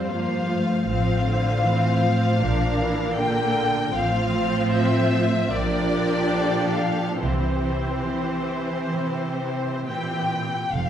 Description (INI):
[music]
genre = classical, slow romantic movement for string orchestra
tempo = 63-79 BPM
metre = 4/4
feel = rubato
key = unclear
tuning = A4 = 440 Hz
[part]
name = warm studio violin section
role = melody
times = 0.0-10.9 s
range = C5 to G5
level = -27 LUFS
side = left 3 dB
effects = none
[part]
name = warm studio violin section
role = second line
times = 0.0-10.9 s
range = D4 to C5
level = -30 LUFS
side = left 1 dB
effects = none
[part]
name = warm studio viola section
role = accompaniment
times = 0.0-10.9 s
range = D3 to D4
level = -25 LUFS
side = right 1 dB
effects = none
[part]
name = rich studio cello section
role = bass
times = 0.0-10.9 s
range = F2 to E3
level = -27 LUFS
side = right 1 dB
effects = none
[part]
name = dark studio double bass section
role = bass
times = 0.9-10.9 s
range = F1 to C2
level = -29 LUFS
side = right 1 dB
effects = none
[sound]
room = wet recital hall reverb, RT60 1.6 s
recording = heard from further back in the room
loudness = -20 LUFS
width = side -9 dB against mid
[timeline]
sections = 0.0-10.9 A section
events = none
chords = 0.0 F; 0.9 F/A; 2.4 Bb; 3.9 F/A; 5.5 Gm7/Bb; 7.2 C